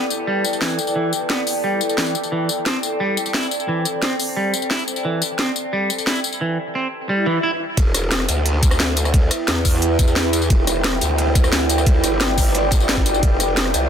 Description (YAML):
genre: dark technical drum and bass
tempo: 176 BPM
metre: 4/4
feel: straight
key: E minor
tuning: A4 = 441 Hz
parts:
  - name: deep dark ambient pad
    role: sustained chords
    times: 0.1-13.9 s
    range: E4 to A5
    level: -25 LUFS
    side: right 1 dB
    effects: chorus, built-in reverb, sidechain pumping
  - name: semi-hollow electric guitar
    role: arpeggios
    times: 0.0-7.5 s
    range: E3 to E4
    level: -23 LUFS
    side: right 2 dB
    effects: sidechain pumping, low-pass filter, dub echo
  - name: airy breathy pad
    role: texture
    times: 0.0-6.4, 13.2-13.9 s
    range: E4 to G5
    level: -25 LUFS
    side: equal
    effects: chorus, sidechain pumping
  - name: drum and bass drum kit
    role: drums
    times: 0.1-13.8 s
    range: hi-hat, rim click, snare drum, tambourine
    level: -21 LUFS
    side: left 1 dB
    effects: none
  - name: swell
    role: sound effects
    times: 7.2-7.8 s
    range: none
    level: -24 LUFS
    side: left 1 dB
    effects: none
  - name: growl bass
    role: bass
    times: 7.8-13.9 s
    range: E1 to E2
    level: -20 LUFS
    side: equal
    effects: chorus, overdrive, sidechain pumping
  - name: crunchy breakbeat drum kit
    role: drums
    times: 7.8-13.8 s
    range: hi-hat, ride cymbal, snare drum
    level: -32 LUFS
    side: right 1 dB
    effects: high-pass filter on cymbals, high-pass filter on hats, high-pass filter on snare, high-pass filter on room
  - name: electronic kick drum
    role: drums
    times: 7.8-13.3 s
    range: none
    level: -16 LUFS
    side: equal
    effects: none
room: light reverb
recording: dense, heavily limited modern master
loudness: -17 LUFS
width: side -8 dB against mid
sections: 0.0-7.8 A section; 7.8-13.9 B section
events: filter sweep on ambient pad 0.0-7.8; swell 7.2-7.8; drop 7.8-13.9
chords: 0.0 Em; 2.3 C69/E; 7.8 Em; 13.2 F